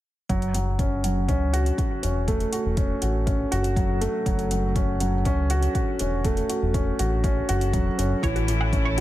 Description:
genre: piano and strings electronica.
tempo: 121 BPM.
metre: 4/4.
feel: straight.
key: F# minor.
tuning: A4 = 443 Hz.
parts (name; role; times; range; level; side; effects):
dark upright piano; riff; 0.3-9.0 s; E3 to F#4; -26 LUFS; equal; low-pass filter, ping-pong delay, shimmer reverb.
round analog bass; bass; 0.3-9.0 s; E1 to C#2; -25 LUFS; equal; sidechain pumping.
electronic hi-hat and woodblock; drums; 0.3-9.0 s; none; -35 LUFS; equal; studio reverb.
electronic kick drum; drums; 0.3-8.8 s; none; -26 LUFS; equal; studio reverb.
clear string quartet; sustained chords; 8.2-9.0 s; A3 to E4; -30 LUFS; left 2 dB; none.
analog pluck; arpeggios; 8.2-9.0 s; F#4 to F#5; -30 LUFS; right 3 dB; chorus, phaser, sidechain pumping, ping-pong delay, shimmer reverb.
room: digital ambience.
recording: none.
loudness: -21 LUFS.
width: side -14 dB against mid.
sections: 0.3-9.0 A section.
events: none.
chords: 0.3 F#m.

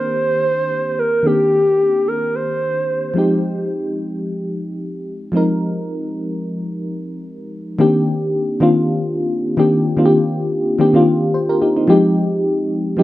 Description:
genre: amapiano.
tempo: 110 BPM.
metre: 4/4.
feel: swing 55% on 16ths.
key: C minor.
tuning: A4 = 441 Hz.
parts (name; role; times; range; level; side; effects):
hollow clarinet-like synth lead; melody; 0.0-3.2 s; G4 to C5; -16 LUFS; equal; chorus, tape echo.
mellow FM electric piano; accompaniment; 0.0-13.0 s; Eb3 to C5; -16 LUFS; left 1 dB; chorus, tremolo.
room: moderate studio reverb, RT60 0.6 s.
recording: dark, warm production.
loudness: -15 LUFS.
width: side -15 dB against mid.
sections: 0.0-7.8 A section; 7.8-13.0 B section.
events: drop 7.8-13.0.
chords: 0.0 Cm9; 3.2 Fm9; 7.8 Cm9; 11.9 Fm9.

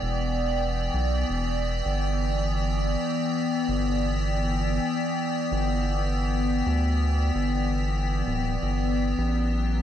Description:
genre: IDM.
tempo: 131 BPM.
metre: 4/4.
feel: swing 56% on 16ths.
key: E minor.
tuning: A4 = 440 Hz.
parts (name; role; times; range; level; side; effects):
icy glass pad; sustained chords; 0.0-9.8 s; E3 to G5; -26 LUFS; left 1 dB; chorus, built-in reverb, vintage 12-bit sampler grit.
round analog bass; bass; 0.0-9.8 s; D1 to D2; -26 LUFS; equal; none.
room: moderate echo chamber reverb, RT60 2.1 s.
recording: none.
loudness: -23 LUFS.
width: side -10 dB against mid.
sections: 0.0-9.8 A section.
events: none.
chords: 0.0 Em7; 1.9 G6; 5.5 Em7/G; 9.2 A7sus2.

